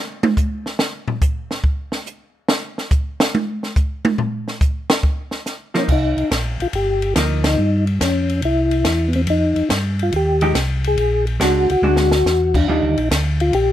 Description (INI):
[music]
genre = soul jazz organ trio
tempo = 141 BPM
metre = 4/4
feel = swing 68% on 8ths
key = C minor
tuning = A4 = 440 Hz
[part]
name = compact cocktail drum kit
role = drums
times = 0.2-13.7 s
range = crash cymbal, hi-hat, kick drum, ride cymbal, snare drum, toms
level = -20 LUFS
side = equal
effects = none
[part]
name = vintage hollow-body jazz guitar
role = accompaniment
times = 5.7-7.6, 10.4-12.9 s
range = Eb3 to G4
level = -21 LUFS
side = right 2 dB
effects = none
[part]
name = percussive tonewheel organ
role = melody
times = 5.8-13.7 s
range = B3 to Ab4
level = -18 LUFS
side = left 2 dB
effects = slow rotary speaker, chorus vibrato
[part]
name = mellow tonewheel organ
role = bass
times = 5.9-13.7 s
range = G1 to G2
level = -20 LUFS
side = equal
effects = slow rotary speaker
[sound]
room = little or no reverb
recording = close, detailed microphones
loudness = -16 LUFS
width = side -12 dB against mid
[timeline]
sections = 0.0-5.9 A section; 5.9-13.7 B section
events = drum solo 0.0-5.9; band accent 7.4; drum fill 11.8-12.3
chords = 0.0 N.C.; 5.0 Bbsus4/F; 5.9 Cm11; 7.6 Eb9; 8.4 C; 9.3 F7sus2; 11.0 Bb7alt; 12.7 Ebmaj9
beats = 0.37 | 0.80 1.22 1.64 2.07 | 2.49 2.92 3.34 3.76 | 4.19 4.61 5.04 5.46 | 5.88 6.31 6.73 7.16 | 7.58 8.01 8.43 8.86 | 9.28 9.70 10.13 10.55 | 10.98 11.40 11.83 12.25 | 12.68 13.10 13.52